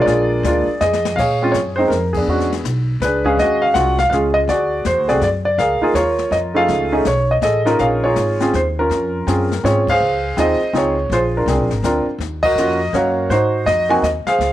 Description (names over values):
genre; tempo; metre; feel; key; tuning
jazz piano trio; 163 BPM; 3/4; swing 63% on 8ths; Bb minor; A4 = 442 Hz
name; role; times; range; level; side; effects
warm concert grand piano; melody; 0.0-14.5 s; Ab3 to Ab5; -15 LUFS; equal; none
upright bass; bass; 0.0-14.5 s; Ab1 to Bb2; -22 LUFS; equal; none
jazz brush drum kit; drums; 0.1-14.5 s; brushed snare drum, crash cymbal, hi-hat, kick drum, ride cymbal, snare drum; -29 LUFS; left 8 dB; none
room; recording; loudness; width
light reverb; 1960s-style stereo; -15 LUFS; side -13 dB against mid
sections
0.0-1.2 A section; 1.2-10.0 B section; 10.0-14.5 C section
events
drum fill 0.8-1.2; band accent 2.1, 9.8, 12.4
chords
0.1 Bb7; 1.2 Bbm9; 2.3 E13; 3.4 Ebm11; 4.5 D7#11; 5.6 Db69; 6.7 F7alt; 7.8 Bbm9; 10.0 Dbmaj7; 11.1 Bb7; 12.2 Ebm7; 13.3 Ab7